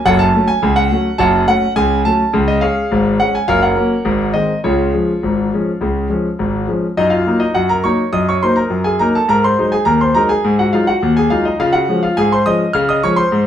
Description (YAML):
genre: ragtime piano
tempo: 104 BPM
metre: 2/4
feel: straight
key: Db major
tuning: A4 = 440 Hz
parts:
  - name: bright concert grand piano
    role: solo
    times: 0.0-13.5 s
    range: Gb1 to F6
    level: -12 LUFS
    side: equal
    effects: none
room: wet small room reverb, RT60 0.5 s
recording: heard from further back in the room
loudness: -12 LUFS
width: side -10 dB against mid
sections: 0.0-7.0 A section; 7.0-13.5 B section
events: none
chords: 0.0 Gbm; 2.3 Db; 3.5 Gb; 4.1 Ab7; 4.7 Db; 7.0 Ebm/Gb; 9.3 Ab7; 11.6 Db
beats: | 0.05 0.62 | 1.20 1.77 | 2.35 2.92 | 3.50 4.07 | 4.65 5.24 | 5.82 6.40 | 6.99 7.56 | 8.14 8.72 | 9.29 9.87 | 10.45 11.02 | 11.60 12.18 | 12.75 13.33